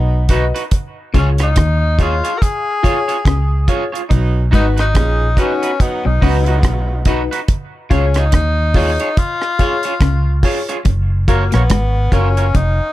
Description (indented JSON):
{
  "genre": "roots reggae",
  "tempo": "71 BPM",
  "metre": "4/4",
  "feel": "swing 59% on 16ths",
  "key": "F# major",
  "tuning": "A4 = 440 Hz",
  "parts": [
    { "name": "warm tenor saxophone", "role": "melody", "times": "0.0-12.9 s", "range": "A#3 to A#4", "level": "-21 LUFS", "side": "left 3 dB", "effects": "dub echo" },
    { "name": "clear horn section", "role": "second line", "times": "0.0-7.0 s", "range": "F#3 to G#4", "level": "-26 LUFS", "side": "right 4 dB", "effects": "dub echo" },
    { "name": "clean electric guitar", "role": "riff", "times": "0.0-12.7 s", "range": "E#2 to D#3", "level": "-24 LUFS", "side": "left 5 dB", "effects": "none" },
    { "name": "vintage muted fingered electric bass", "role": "bass", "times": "0.0-12.8 s", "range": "E#1 to D#2", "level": "-15 LUFS", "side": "equal", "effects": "none" },
    { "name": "electric guitar at the edge of break-up", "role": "accompaniment", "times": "0.3-12.5 s", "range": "D#4 to C#5", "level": "-24 LUFS", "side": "right 4 dB", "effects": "lush chorus, dub echo" },
    { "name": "dark upright piano", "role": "stabs", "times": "0.3-12.4 s", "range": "D#4 to D#5", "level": "-22 LUFS", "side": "left 6 dB", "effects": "none" },
    { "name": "deep reggae drum kit", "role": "drums", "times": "0.3-12.8 s", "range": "hi-hat, kick drum, rim click", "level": "-15 LUFS", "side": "equal", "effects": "none" }
  ],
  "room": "little or no reverb",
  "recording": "dark, warm production",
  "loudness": "-13 LUFS",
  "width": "side -15 dB against mid",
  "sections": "0.0-10.9 A section; 10.9-12.9 B section",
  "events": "none",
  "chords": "0.0 B; 0.7 C#; 4.1 B; 7.5 C#; 10.9 F#maj7"
}